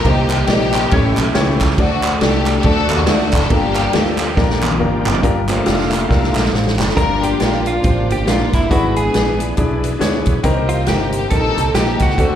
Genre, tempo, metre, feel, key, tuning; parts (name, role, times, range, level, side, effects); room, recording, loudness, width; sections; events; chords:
uptempo gospel; 138 BPM; 4/4; swing 59% on 8ths; G minor; A4 = 442 Hz
warm studio string section; melody; 0.0-4.4, 7.0-12.4 s; A3 to Bb4; -21 LUFS; left 3 dB; slapback echo
warm concert grand piano; accompaniment; 0.0-12.4 s; G2 to G5; -20 LUFS; left 3 dB; slapback echo
bright tonewheel organ; sustained chords; 0.0-12.4 s; D3 to F#5; -26 LUFS; right 3 dB; slow rotary speaker, chorus vibrato
fingered electric bass; bass; 0.0-12.4 s; F1 to Eb2; -20 LUFS; right 1 dB
swinging big-band drum kit; drums; 0.0-12.3 s; hi-hat, kick drum, ride cymbal, snare drum, toms; -19 LUFS; equal
group handclap; percussion; 0.3-6.9 s; -24 LUFS; right 3 dB; slapback echo
dark French horn section; sustained chords; 5.2-12.4 s; D3 to D4; -31 LUFS; equal
direct-recorded clean electric guitar; melody; 7.0-12.4 s; E4 to Bb4; -22 LUFS; right 3 dB
light reverb; live gig heard through the venue's PA, recital hall reverb; -13 LUFS; side -10 dB against mid
0.0-5.2 A section; 5.2-7.0 B section; 7.0-12.4 C section
drum fill 4.4-5.2, 6.1-7.0; tonewheel organ solo 5.2-7.0
0.0 Cm7; 0.9 A7; 1.8 D; 3.5 Gm7; 8.7 E7/G#; 10.4 Cm7